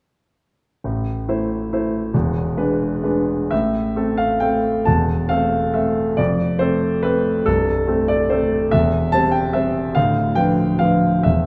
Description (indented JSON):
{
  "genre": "classical, piano waltz",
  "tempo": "120-152 BPM",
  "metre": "3/4",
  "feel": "rubato",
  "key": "A minor",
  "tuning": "A4 = 440 Hz",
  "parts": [
    { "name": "clear concert grand piano", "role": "solo", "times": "0.8-11.5 s", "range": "C1 to A5", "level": "-19 LUFS", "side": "equal", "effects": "none" }
  ],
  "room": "wet recital hall reverb, RT60 1.6 s",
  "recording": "none",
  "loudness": "-19 LUFS",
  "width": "mono",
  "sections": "0.8-3.5 A section; 3.5-11.5 B section",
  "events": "none",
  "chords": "0.8 Am; 2.1 E7; 3.5 Am; 6.2 F; 8.7 C/E; 10.0 Bdim/D"
}